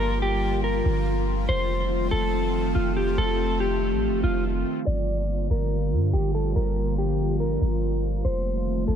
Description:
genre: hip hop, atmospheric cloud-rap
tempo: 142 BPM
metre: 4/4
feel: half-time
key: G minor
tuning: A4 = 440 Hz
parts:
  - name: mellow electric guitar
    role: melody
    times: 0.0-9.0 s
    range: F4 to D5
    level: -28 LUFS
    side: equal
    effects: digital delay
  - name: glassy FM pad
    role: sustained chords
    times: 0.0-9.0 s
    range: D3 to F4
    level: -27 LUFS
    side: right 1 dB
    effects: ensemble chorus, built-in reverb
  - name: warm 808-style bass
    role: bass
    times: 0.0-9.0 s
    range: F1 to G2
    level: -26 LUFS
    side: equal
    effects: none
room: light reverb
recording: low-pass filter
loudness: -22 LUFS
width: side -8 dB against mid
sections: 0.0-4.9 A section; 4.9-9.0 B section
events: filter sweep 4.9-9.0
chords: 0.0 Gm7; 1.5 F7; 4.9 Gm7; 8.2 F7

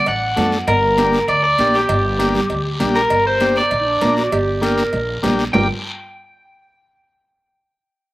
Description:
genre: latin, cumbia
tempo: 198 BPM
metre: 4/4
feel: straight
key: G harmonic minor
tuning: A4 = 439 Hz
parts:
  - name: electric guitar at the edge of break-up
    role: melody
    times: 0.0-5.7 s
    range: G4 to G5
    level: -17 LUFS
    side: equal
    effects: spring reverb
  - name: upright bass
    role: bass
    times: 0.1-5.7 s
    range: G1 to F#2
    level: -24 LUFS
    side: equal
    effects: none
  - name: congas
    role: percussion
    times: 0.1-5.6 s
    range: none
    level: -25 LUFS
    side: right 2 dB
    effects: none
  - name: cowbell and timbales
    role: percussion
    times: 0.1-5.6 s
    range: none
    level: -25 LUFS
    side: right 2 dB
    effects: none
  - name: guiro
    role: percussion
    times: 0.1-5.6 s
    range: none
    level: -30 LUFS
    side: left 2 dB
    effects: none
  - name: overdriven combo organ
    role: accompaniment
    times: 0.4-5.7 s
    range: A3 to Bb4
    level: -20 LUFS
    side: left 2 dB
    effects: none
  - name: warm clarinet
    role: second line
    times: 3.8-5.7 s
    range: D4 to Bb4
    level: -22 LUFS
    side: right 2 dB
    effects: slapback echo
room: little or no reverb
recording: recorded outdoors, with no room sound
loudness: -14 LUFS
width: side -17 dB against mid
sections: 0.0-3.1 A section; 3.1-5.5 B section; 5.5-6.8 C section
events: none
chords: 0.0 D; 0.7 Gm

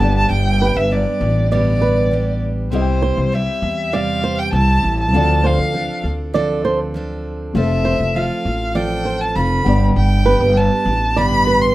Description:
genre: pop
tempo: 100 BPM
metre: 4/4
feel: straight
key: unclear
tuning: A4 = 440 Hz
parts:
  - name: rich violin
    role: melody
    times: 0.0-11.7 s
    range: C5 to C6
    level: -20 LUFS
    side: equal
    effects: none
  - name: felt-muted upright piano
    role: accompaniment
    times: 0.0-11.7 s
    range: A3 to G5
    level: -28 LUFS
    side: left 6 dB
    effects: none
  - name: picked steel-string acoustic guitar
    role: accompaniment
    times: 0.0-11.7 s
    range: G2 to A4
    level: -22 LUFS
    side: right 2 dB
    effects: none
  - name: upright bass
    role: bass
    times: 0.0-11.7 s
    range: F1 to E2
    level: -18 LUFS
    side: equal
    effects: none
  - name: flamenco guitar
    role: arpeggios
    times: 0.6-11.6 s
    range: B4 to D5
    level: -20 LUFS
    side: right 3 dB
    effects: none
room: light reverb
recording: rough home demo mix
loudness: -15 LUFS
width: side -16 dB against mid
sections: 0.0-11.7 A section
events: none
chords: 0.0 G; 2.7 C; 5.1 Dm7; 7.5 F; 9.7 G

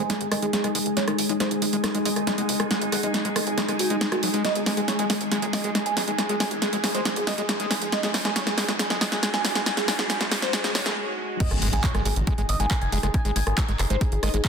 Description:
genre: psychedelic trance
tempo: 138 BPM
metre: 4/4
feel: straight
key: unclear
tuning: A4 = 438 Hz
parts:
  - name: overdriven synth lead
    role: melody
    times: 0.0-14.5 s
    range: D#4 to G#5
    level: -30 LUFS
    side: right 1 dB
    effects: chorus, phaser, sidechain pumping, tape echo
  - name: overtone-sweeping drone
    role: sustained chords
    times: 0.0-14.5 s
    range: G#3 to G#4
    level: -30 LUFS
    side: left 3 dB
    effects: chorus, built-in reverb, sidechain pumping
  - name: overdriven acid bass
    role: riff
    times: 0.0-14.4 s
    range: F#3 to A3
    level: -32 LUFS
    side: moving between left 5 dB and right 5 dB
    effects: distortion, auto-pan, sidechain pumping, tape echo
  - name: tight sequencer bass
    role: bass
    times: 0.0-14.4 s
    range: F#1 to A1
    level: -30 LUFS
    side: equal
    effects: high-pass filter
  - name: riser and impact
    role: sound effects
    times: 0.8-13.1 s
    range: none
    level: -36 LUFS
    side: equal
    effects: none
  - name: ethereal airy pad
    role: texture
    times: 0.0-14.5 s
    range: D#4 to G#5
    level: -33 LUFS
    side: right 3 dB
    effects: ensemble chorus, built-in reverb, phaser, sidechain pumping
  - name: techno drum kit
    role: drums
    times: 0.1-14.5 s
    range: crash cymbal, handclaps, hi-hat, rim click, snare drum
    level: -26 LUFS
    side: equal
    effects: soft clipping on snare
  - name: electronic kick drum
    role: drums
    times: 11.4-14.5 s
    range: none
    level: -24 LUFS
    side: equal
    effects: none
room: moderate plate reverb, RT60 1.5 s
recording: dense, heavily limited modern master, high-pass filter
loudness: -22 LUFS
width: side -6 dB against mid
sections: 0.0-11.4 A section; 11.4-14.5 B section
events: build-up 0.0-11.4; drum fill 0.0-11.0; filter sweep on acid bass 0.0-11.4; filter sweep on analog synth lead 0.0-11.4; filter sweep 0.0-11.4; break 11.0-11.4; drop 11.4-14.5; impact 11.4-13.1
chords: 0.0 G#5

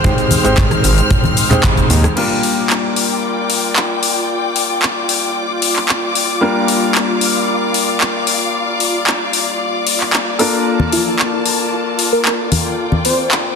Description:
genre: nu-disco, nu disco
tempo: 113 BPM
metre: 4/4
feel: straight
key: G minor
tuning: A4 = 440 Hz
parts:
  - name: bright baby grand piano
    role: accompaniment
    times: 0.0-13.6 s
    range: G3 to C5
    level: -19 LUFS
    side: left 2 dB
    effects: sidechain pumping, digital delay
  - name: rich studio string section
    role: sustained chords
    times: 0.0-13.6 s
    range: F4 to F6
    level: -19 LUFS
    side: left 2 dB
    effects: sidechain pumping
  - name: fat analog bass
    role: bass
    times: 0.0-2.1 s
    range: Ab1 to Eb2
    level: -14 LUFS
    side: right 1 dB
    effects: none
  - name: house drum kit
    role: drums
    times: 0.0-13.4 s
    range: crash cymbal, handclaps, hi-hat, rim click, shaker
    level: -17 LUFS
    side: left 2 dB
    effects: overdrive
  - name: kick drum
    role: drums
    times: 0.0-1.9 s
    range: none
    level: -16 LUFS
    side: equal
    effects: none
  - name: congas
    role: percussion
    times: 0.3-2.1, 10.8-13.0 s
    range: none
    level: -19 LUFS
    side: left 1 dB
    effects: none
  - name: wide unison lead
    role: melody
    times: 10.9-13.2 s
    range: F4 to C5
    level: -20 LUFS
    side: equal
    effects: ping-pong delay
room: moderate plate reverb, RT60 2.1 s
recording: dense, heavily limited modern master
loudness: -13 LUFS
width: side -5 dB against mid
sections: 0.0-2.2 A section; 2.2-13.6 B section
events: band accent 1.6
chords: 0.0 Abmaj7; 2.2 Gm7; 10.4 Bbmaj7

